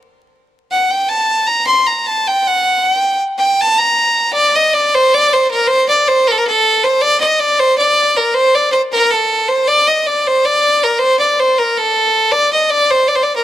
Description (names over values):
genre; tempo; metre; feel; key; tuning
balkan folk; free time; none; none; unclear; A4 = 440 Hz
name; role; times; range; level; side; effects
bright fiddle; solo; 0.7-13.4 s; A4 to C6; -11 LUFS; equal; none
room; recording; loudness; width
moderate plate reverb, RT60 3.5 s; vinyl crackle; -11 LUFS; side -12 dB against mid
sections
0.0-4.3 A section; 4.3-13.4 B section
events
fiddle solo 0.0-4.3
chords
none